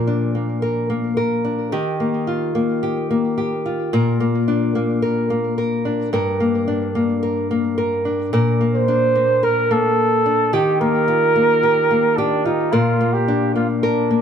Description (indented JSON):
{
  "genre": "folktronica",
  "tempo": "109 BPM",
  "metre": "4/4",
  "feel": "straight",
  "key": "Bb major",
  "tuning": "A4 = 440 Hz",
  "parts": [
    { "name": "nylon-string guitar", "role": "arpeggios", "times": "0.0-14.2 s", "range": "G2 to Bb4", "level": "-18 LUFS", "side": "left 1 dB", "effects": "ping-pong delay" },
    { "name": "mellow flugelhorn", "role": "melody", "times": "8.8-14.2 s", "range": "D4 to C5", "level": "-17 LUFS", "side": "right 2 dB", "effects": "vintage 12-bit sampler grit" }
  ],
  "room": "moderate small room reverb, RT60 0.5 s",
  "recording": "none",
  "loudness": "-16 LUFS",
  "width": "side -8 dB against mid",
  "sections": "0.0-14.2 A section",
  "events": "none",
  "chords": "0.0 Bb; 1.7 Ebadd9; 3.9 Bb; 6.1 Gm; 8.3 Bb; 10.5 Ebadd9; 12.7 Bb"
}